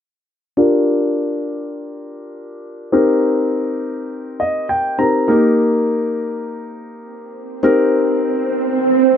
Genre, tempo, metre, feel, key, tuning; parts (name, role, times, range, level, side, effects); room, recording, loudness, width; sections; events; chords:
pop; 102 BPM; 4/4; straight; G minor; A4 = 440 Hz
dark grand piano; accompaniment; 0.6-9.2 s; Bb3 to Bb5; -16 LUFS; left 1 dB; low-pass filter
swell; sound effects; 7.9-9.2 s; -17 LUFS; right 6 dB
moderate booth ambience, RT60 0.2 s; -15 LUFS; side -8 dB against mid
0.6-9.2 A section
filter sweep on grand piano 0.6-9.2; grand piano fill 4.1-5.3; swell 7.9-9.2
0.6 Gm7; 2.9 Cm7; 5.3 Eb; 7.6 Cm7